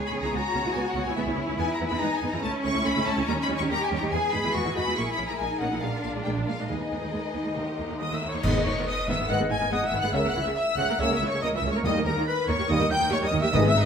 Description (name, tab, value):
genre	classical, dramatic, fast romantic movement for symphony orchestra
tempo	141 BPM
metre	4/4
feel	straight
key	G# minor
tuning	A4 = 440 Hz
part	clear symphonic violin section	second line	0.0-13.9 s	D#4 to G#5	-33 LUFS	left 3 dB	none
part	clear symphonic cello section	bass	0.0-13.8 s	C#2 to G#4	-31 LUFS	right 1 dB	none
part	clear symphonic violin section	melody	0.1-13.9 s	D#5 to G#6	-30 LUFS	left 3 dB	none
part	bright symphonic viola section	accompaniment	0.1-13.8 s	C#3 to A#4	-32 LUFS	right 1 dB	none
part	rich symphonic double bass section	bass	0.1-13.8 s	G#1 to E2	-32 LUFS	right 3 dB	none
part	cymbal swell, clash cymbals and concert bass drum	percussion	5.0-9.3 s	none	-34 LUFS	equal	none
part	timpani	percussion	6.7-8.2, 11.8-13.9 s	G#2 to D#3	-30 LUFS	left 2 dB	none
part	clear oboe	second line	8.0-13.9 s	A#4 to G#5	-34 LUFS	right 2 dB	none
part	hollow concert flute	second line	8.0-13.9 s	A#4 to G#5	-32 LUFS	left 2 dB	none
part	warm clarinet	second line	8.4-13.9 s	A#4 to F#5	-33 LUFS	left 2 dB	none
part	dark trombone section	sustained chords	8.4-13.7 s	C#3 to A#3	-32 LUFS	right 3 dB	none
part	dark French horn section	sustained chords	8.5-13.7 s	A#3 to B4	-34 LUFS	left 4 dB	none
room	wet recital hall reverb, RT60 1.5 s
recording	none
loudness	-24 LUFS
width	side -7 dB against mid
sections	0.0-8.4 A section; 8.4-13.9 B section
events	band accent 8.4-8.9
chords	0.0 C#m7; 1.6 E; 2.4 A/C#; 3.3 D#7; 4.1 E; 5.0 A#7(b5, no3); 5.8 A#7; 6.7 G#m/D#; 7.6 D#; 8.4 G#m; 10.1 A#dim/C#; 11.8 D#